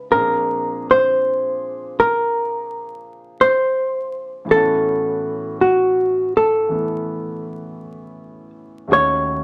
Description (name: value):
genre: jazz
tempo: 55 BPM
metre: 4/4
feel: swing 69% on 8ths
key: unclear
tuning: A4 = 440 Hz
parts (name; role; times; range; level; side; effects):
- hollow-body jazz guitar; melody; 0.0-9.4 s; F#4 to C#5; -19 LUFS; equal; none
- clear concert grand piano; accompaniment; 0.0-9.4 s; D#2 to G#4; -31 LUFS; equal; none
room: moderate club reverb, RT60 0.6 s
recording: vinyl crackle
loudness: -19 LUFS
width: mono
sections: 0.0-9.4 A section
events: none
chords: 0.1 A#9; 4.5 A69; 8.9 D#m7b5